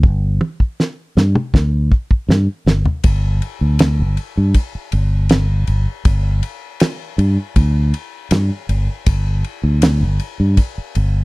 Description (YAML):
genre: straight-eighth soul blues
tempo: 80 BPM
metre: 4/4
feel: straight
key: unclear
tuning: A4 = 441 Hz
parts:
  - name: fingered electric bass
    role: bass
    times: 0.0-11.2 s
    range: G1 to G2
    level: -15 LUFS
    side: equal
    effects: none
  - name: damped 70s drum kit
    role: drums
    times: 0.0-11.1 s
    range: kick drum, ride cymbal, snare drum, toms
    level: -17 LUFS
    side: equal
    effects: none
room: little or no reverb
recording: dry, close 1970s-style studio recording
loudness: -14 LUFS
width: side -24 dB against mid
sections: 0.0-3.0 A section; 3.0-11.2 B section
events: drum fill 0.0-3.0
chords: none